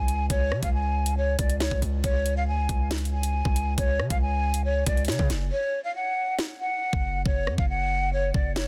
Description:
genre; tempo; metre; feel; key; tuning
hip hop, drill; 138 BPM; 4/4; half-time; unclear; A4 = 441 Hz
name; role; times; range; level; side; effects
breathy hollow jazz flute; melody; 0.0-8.7 s; C#5 to G#5; -31 LUFS; equal; low-pass filter, digital delay
hard-hitting 808-style bass; bass; 0.0-8.7 s; F#1 to C#3; -29 LUFS; equal; none
drill drum kit; drums; 0.1-8.7 s; hi-hat, kick drum, rim click, snare drum; -29 LUFS; equal; none
room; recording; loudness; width
little or no reverb; dense, heavily limited modern master; -26 LUFS; mono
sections
0.0-8.7 A section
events
hi-hats muted 5.5-8.7; break 5.5-6.4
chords
0.0 C#5; 5.5 F#5

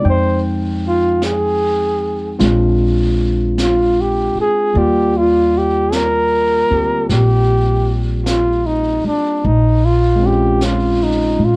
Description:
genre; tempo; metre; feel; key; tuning
jazz ballad; 51 BPM; 4/4; swing 66% on 8ths; Eb major; A4 = 440 Hz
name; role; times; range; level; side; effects
breathy flugelhorn; melody; 0.0-11.6 s; D4 to C5; -15 LUFS; equal; none
barky tine electric piano; accompaniment; 0.0-11.6 s; G3 to G5; -19 LUFS; equal; none
upright bass; bass; 0.0-11.6 s; Bb1 to Bb2; -17 LUFS; equal; none
vintage brush drum kit; drums; 0.0-11.6 s; brushed snare drum, hi-hat, snare drum; -28 LUFS; right 1 dB; none
room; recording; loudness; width
light reverb; worn, warbling old tape, cassette tape, warbly pitch drift; -12 LUFS; side -28 dB against mid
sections
0.0-11.6 A section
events
none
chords
0.0 Fm7; 2.4 Bb9; 4.8 Ebmaj9; 9.4 Bbm7

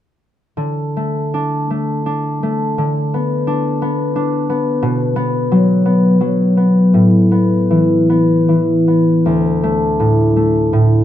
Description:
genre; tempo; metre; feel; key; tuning
classical, solo harp piece; 76-91 BPM; 3/4; rubato; D major; A4 = 440 Hz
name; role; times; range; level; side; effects
concert harp; solo; 0.6-11.0 s; D2 to D4; -12 LUFS; left 1 dB; none
room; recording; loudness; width
light reverb; close, detailed microphones; -12 LUFS; side -11 dB against mid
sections
0.6-11.0 A section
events
none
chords
0.6 D5; 2.8 Bm/D; 4.8 Bm; 6.9 Asus24; 9.2 D5

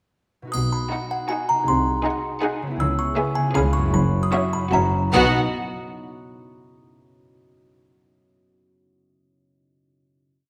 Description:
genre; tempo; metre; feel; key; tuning
cinematic, playful, whimsical film cue; 157 BPM; 3/4; uneven beats; B major; A4 = 439 Hz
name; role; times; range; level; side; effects
concert harp; arpeggios; 0.4-5.4 s; F#2 to D#5; -29 LUFS; equal; none
music box; melody; 0.5-5.4 s; F#5 to E6; -28 LUFS; equal; none
clear chamber double bass section; bass; 0.5-5.4 s; F#1 to C#2; -28 LUFS; equal; none
rich chamber cello section; bass; 0.5-5.4 s; F#2 to C#3; -29 LUFS; equal; none
triangle; percussion; 0.5-1.3 s; none; -40 LUFS; equal; none
clear chamber violin section; melody; 0.9-5.4 s; E5 to F#5; -32 LUFS; equal; none
clear chamber violin section; second line; 0.9-5.4 s; F#4 to G#4; -30 LUFS; equal; none
rich symphonic viola section; accompaniment; 0.9-5.4 s; B3 to D#4; -32 LUFS; equal; none
room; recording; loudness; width
wet scoring stage reverb, RT60 1.6 s; none; -22 LUFS; mono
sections
0.5-5.1 A section; 5.1-6.3 final chord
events
none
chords
0.5 B; 1.7 G#7/B#; 2.8 C#m7; 3.6 C#7; 3.9 F#7sus4; 4.7 F#7; 5.1 B

